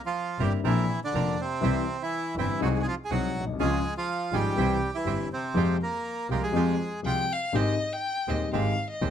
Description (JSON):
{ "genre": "tango", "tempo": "122 BPM", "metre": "4/4", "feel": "rubato", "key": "F harmonic minor", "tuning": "A4 = 440 Hz", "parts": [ { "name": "bandoneon", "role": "melody", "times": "0.0-7.0 s", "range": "C3 to Bb4", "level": "-30 LUFS", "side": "right 2 dB", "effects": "none" }, { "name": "dark baby grand piano", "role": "accompaniment", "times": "0.4-9.1 s", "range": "Eb1 to G4", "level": "-29 LUFS", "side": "left 4 dB", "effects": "none" }, { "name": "bandoneon", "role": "stabs", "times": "0.4-9.1 s", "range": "Ab3 to Bb4", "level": "-35 LUFS", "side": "right 10 dB", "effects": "none" }, { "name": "clear double bass", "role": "bass", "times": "0.4-9.1 s", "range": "F1 to F2", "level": "-30 LUFS", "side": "right 2 dB", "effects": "none" }, { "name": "dark violin", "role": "second line", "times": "7.1-9.1 s", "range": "Eb5 to G5", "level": "-29 LUFS", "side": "left 2 dB", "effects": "none" } ], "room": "light reverb", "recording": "close, detailed microphones", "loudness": "-25 LUFS", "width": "side -9 dB against mid", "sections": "0.0-7.5 A section; 7.5-9.1 B section", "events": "violin solo 7.5-9.1", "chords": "0.0 C7; 0.6 Bbadd9; 1.6 C; 2.6 Ab7/C; 3.6 Db; 4.6 C; 5.6 Fmadd9; 7.5 Abmaj7", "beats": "0.14 0.64 1.14 | 1.63 2.12 2.61 3.10 | 3.59 4.08 4.57 5.06 | 5.55 6.04 6.54 7.04 | 7.54 8.03 8.53 9.02" }